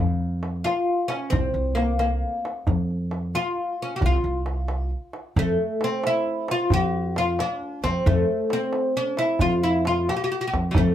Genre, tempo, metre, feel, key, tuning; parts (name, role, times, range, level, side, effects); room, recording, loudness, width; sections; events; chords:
Persian modal ensemble; 89 BPM (dotted quarters); 6/8; straight; F dastgah chahargah from 5.4 s; A4 = 440 Hz
upright bass; bass; 0.0-10.9 s; C2 to F2; -24 LUFS; equal
tombak; percussion; 0.2-10.9 s; -27 LUFS; equal
oud; melody; 0.6-10.9 s; Gb3+45c to Gb4+45c; -24 LUFS; left 1 dB
light reverb; band playing live in one room; -22 LUFS; side -11 dB against mid
0.0-5.4 A section; 5.4-10.9 B section